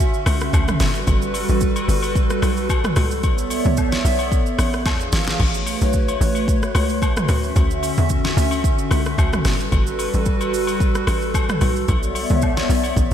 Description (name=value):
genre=amapiano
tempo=111 BPM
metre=4/4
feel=swing 55% on 16ths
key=unclear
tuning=A4 = 440 Hz
part: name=hollow soft pad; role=sustained chords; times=0.0-13.1 s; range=D3 to F5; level=-22 LUFS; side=equal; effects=chorus
part: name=tight log drum bass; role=bass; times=0.0-13.1 s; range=G1 to E2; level=-21 LUFS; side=equal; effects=none
part: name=deep house drum kit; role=drums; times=0.0-13.1 s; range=crash cymbal, hi-hat, kick drum, rim click, shaker, snare drum, toms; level=-21 LUFS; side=equal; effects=none
part: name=agogo bells and woodblock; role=percussion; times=0.3-13.0 s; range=none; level=-29 LUFS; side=left 5 dB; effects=none
room=moderate lush hall reverb, RT60 1.8 s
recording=dreamy mix soaked in reverb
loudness=-17 LUFS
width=side -9 dB against mid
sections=0.0-13.1 A section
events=drum fill 4.9-5.4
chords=0.0 Dmaj9; 0.8 Gmaj9; 3.2 Bm11; 4.9 E7b9; 5.4 A69; 7.3 Dmaj9; 9.5 Gmaj9; 11.9 Bm11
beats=0.53 | 1.07 1.61 2.15 2.69 | 3.23 3.78 4.32 4.86 | 5.40 5.94 6.48 7.02 | 7.56 8.10 8.64 9.18 | 9.72 10.26 10.80 11.34 | 11.88 12.42 12.96